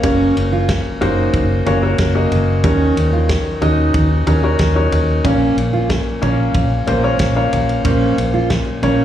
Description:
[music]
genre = piano-driven pop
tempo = 92 BPM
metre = 4/4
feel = straight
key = unclear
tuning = A4 = 439 Hz
[part]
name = clear concert grand piano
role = accompaniment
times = 0.0-9.0 s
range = Bb2 to Eb5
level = -18 LUFS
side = left 2 dB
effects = slapback echo
[part]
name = fingerpicked steel-string acoustic guitar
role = riff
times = 0.0-9.0 s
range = Bb3 to F4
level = -20 LUFS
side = right 4 dB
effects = none
[part]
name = vintage muted fingered electric bass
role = bass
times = 0.0-9.0 s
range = Gb1 to Eb2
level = -17 LUFS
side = equal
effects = none
[part]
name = loose indie drum kit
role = drums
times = 0.0-9.0 s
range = kick drum, ride cymbal, snare drum, toms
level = -22 LUFS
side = equal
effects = none
[sound]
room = light reverb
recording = live gig heard through the venue's PA, club reverb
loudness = -13 LUFS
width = side -11 dB against mid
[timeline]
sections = 0.0-9.0 A section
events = none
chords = 0.0 Gb; 2.6 Ebm7; 5.2 Bbm

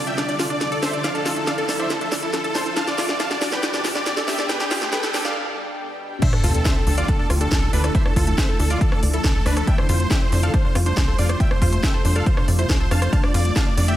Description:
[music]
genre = uplifting trance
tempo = 139 BPM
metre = 4/4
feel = straight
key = D dorian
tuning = A4 = 440 Hz
[part]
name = big supersaw lead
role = melody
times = 0.0-14.0 s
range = D4 to A5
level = -25 LUFS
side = right 1 dB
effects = cassette tape, sidechain pumping, tape echo
[part]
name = riser and sub drop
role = sound effects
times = 0.2-7.9 s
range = none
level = -30 LUFS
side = right 1 dB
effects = none
[part]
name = wide unison pluck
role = arpeggios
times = 0.1-13.9 s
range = A3 to D5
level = -30 LUFS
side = left 1 dB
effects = sidechain pumping, analog delay
[part]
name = techno drum kit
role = drums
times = 0.1-14.0 s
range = crash cymbal, hi-hat, ride cymbal, rim click, snare drum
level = -26 LUFS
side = equal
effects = overdrive
[part]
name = electronic kick drum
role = drums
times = 6.2-13.6 s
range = none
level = -20 LUFS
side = equal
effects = overdrive
[part]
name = tight sequencer bass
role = bass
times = 6.4-13.9 s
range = C2 to F2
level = -20 LUFS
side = equal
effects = sidechain pumping
[sound]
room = moderate lush hall reverb, RT60 1.9 s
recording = dreamy mix soaked in reverb, high-pass filter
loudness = -18 LUFS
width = side -13 dB against mid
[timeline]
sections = 0.0-6.2 A section; 6.2-14.0 B section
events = build-up 0.0-6.2; drum fill 0.0-5.4; break 5.4-6.2; drop 6.2-14.0; impact 6.2-7.9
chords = 0.0 Dmadd9/F; 2.8 G; 6.2 Dmadd9; 9.7 Fadd9; 13.1 Dmadd9/F

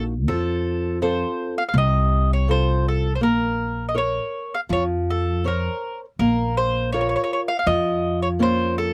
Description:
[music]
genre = italian folk, Italian serenade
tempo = 82 BPM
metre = 4/4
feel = straight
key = Bb harmonic minor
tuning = A4 = 440 Hz
[part]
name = mandolin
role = melody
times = 0.0-8.9 s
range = A4 to F5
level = -26 LUFS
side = equal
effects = none
[part]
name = nylon-string guitar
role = accompaniment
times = 0.0-8.9 s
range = C3 to Db5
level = -27 LUFS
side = equal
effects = none
[part]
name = upright bass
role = bass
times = 0.0-8.9 s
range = Bb1 to F2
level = -26 LUFS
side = equal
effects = none
[sound]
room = little or no reverb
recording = close, detailed microphones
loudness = -22 LUFS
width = mono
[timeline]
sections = 0.0-6.2 A section; 6.2-8.9 A section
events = none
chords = 0.3 F; 3.2 Bbmadd9; 6.2 Bbm

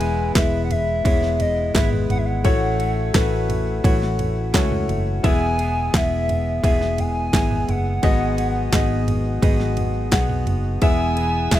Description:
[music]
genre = piano-driven pop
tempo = 86 BPM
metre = 4/4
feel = straight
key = E major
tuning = A4 = 440 Hz
[part]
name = hollow clarinet-like synth lead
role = melody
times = 0.0-11.6 s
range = D#5 to G#5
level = -25 LUFS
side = equal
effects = chorus, ping-pong delay
[part]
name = dark baby grand piano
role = accompaniment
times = 0.0-11.6 s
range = G#2 to F#5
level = -24 LUFS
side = left 5 dB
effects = none
[part]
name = direct-recorded clean electric guitar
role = riff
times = 0.0-11.6 s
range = E2 to G#4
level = -30 LUFS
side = right 8 dB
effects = none
[part]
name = vintage muted fingered electric bass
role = bass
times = 0.0-11.6 s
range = E1 to C#2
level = -23 LUFS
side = equal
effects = none
[part]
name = pop drum kit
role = drums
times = 0.0-11.6 s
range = handclaps, kick drum, ride cymbal, snare drum, toms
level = -20 LUFS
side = right 1 dB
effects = none
[part]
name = tonewheel organ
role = sustained chords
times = 10.8-11.6 s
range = E3 to B4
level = -29 LUFS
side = right 2 dB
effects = slow rotary speaker
[sound]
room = little or no reverb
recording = none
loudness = -18 LUFS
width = side -13 dB against mid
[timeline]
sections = 0.0-11.6 A section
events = grand piano fill 4.2-5.2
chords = 0.0 E; 2.4 A6; 5.2 E; 8.0 G#m7; 10.8 E

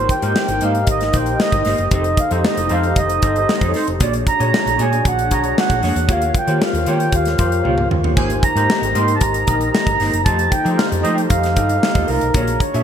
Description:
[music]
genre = polished 1980s jazz-funk pop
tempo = 115 BPM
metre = 4/4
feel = straight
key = Ab major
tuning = A4 = 439 Hz
[part]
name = mellow accordion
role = melody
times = 0.0-12.8 s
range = Bb4 to C6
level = -20 LUFS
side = right 3 dB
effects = digital delay
[part]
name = bell-like tine electric piano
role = accompaniment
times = 0.0-12.8 s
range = D4 to Fb5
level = -22 LUFS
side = left 3 dB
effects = ensemble chorus
[part]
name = hollow-body short-scale fingered electric bass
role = bass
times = 0.0-12.8 s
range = F1 to F3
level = -21 LUFS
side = equal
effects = none
[part]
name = clean electric guitar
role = riff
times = 0.1-12.8 s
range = A3 to C#5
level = -27 LUFS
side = right 4 dB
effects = lush chorus
[part]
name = modern studio drum kit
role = drums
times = 0.1-12.8 s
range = hi-hat, kick drum, snare drum, splash cymbal, toms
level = -20 LUFS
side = left 1 dB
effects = gated reverb
[sound]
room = moderate plate reverb, RT60 2.7 s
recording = bright 1980s-style digital production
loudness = -14 LUFS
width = side -8 dB against mid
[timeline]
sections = 0.0-12.8 A section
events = drum fill 7.7-8.2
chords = 0.0 Abmaj9; 1.9 F7; 4.0 Bb7alt; 6.1 Eb9; 8.2 Abmaj9; 10.3 F7

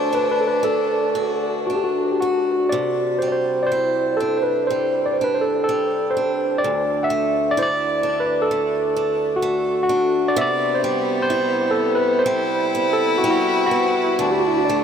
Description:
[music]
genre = celtic folk, Celtic slow air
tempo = 63 BPM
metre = 4/4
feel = uneven beats, rubato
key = unclear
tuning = A4 = 438 Hz
[part]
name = overdriven tine electric piano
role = melody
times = 0.0-14.8 s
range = E4 to F#5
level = -19 LUFS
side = equal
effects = diffuse ambient delay
[part]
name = rich fiddle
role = second line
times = 0.0-2.2, 10.4-14.8 s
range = B3 to E4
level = -25 LUFS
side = left 4 dB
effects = diffuse ambient delay
[part]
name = picked swing-style acoustic guitar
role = accompaniment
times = 0.0-14.8 s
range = D2 to F#4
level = -26 LUFS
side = right 4 dB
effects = none
[sound]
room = wet huge ambient reverb, RT60 6.5 s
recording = dreamy mix soaked in reverb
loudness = -18 LUFS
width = side -7 dB against mid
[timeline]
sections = 0.0-2.7 A section; 2.7-14.8 B section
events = none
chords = 0.0 D; 2.7 Cadd9; 6.6 Dsus2; 10.4 Cmaj7; 14.2 D

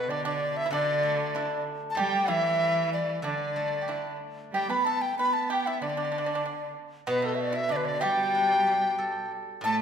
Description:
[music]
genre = chinese traditional, Chinese chamber ensemble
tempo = 95 BPM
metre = 2/4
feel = rubato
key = G gong mode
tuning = A4 = 440 Hz
[part]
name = breathy large dizi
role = melody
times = 0.0-9.8 s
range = A4 to B5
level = -27 LUFS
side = left 2 dB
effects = none
[part]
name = bright cello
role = second line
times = 0.0-9.8 s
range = B2 to B3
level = -34 LUFS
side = right 4 dB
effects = none
[part]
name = pipa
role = second line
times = 0.0-9.8 s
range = A3 to B4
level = -34 LUFS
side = right 4 dB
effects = none
[part]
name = steel-string zither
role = accompaniment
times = 0.0-9.8 s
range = A2 to A4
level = -35 LUFS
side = right 1 dB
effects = none
[sound]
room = wet recital hall reverb, RT60 1.6 s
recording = minimal, uncompressed stereo recording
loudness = -25 LUFS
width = side -7 dB against mid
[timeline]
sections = 0.0-9.6 A section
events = none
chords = none

